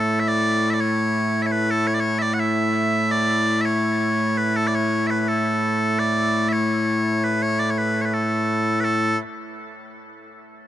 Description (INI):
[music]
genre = scottish traditional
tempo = 84 BPM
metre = 2/4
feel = straight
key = A major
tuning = A4 = 439 Hz
[part]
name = loud bright bagpipes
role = solo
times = 0.0-9.2 s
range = A2 to F#5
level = -19 LUFS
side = equal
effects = none
[sound]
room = moderate huge ambient reverb, RT60 9.7 s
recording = dark, warm production, nothing above 10.5 kHz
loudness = -19 LUFS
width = side -12 dB against mid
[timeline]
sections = 0.0-8.9 A section; 8.9-10.3 B section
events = none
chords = none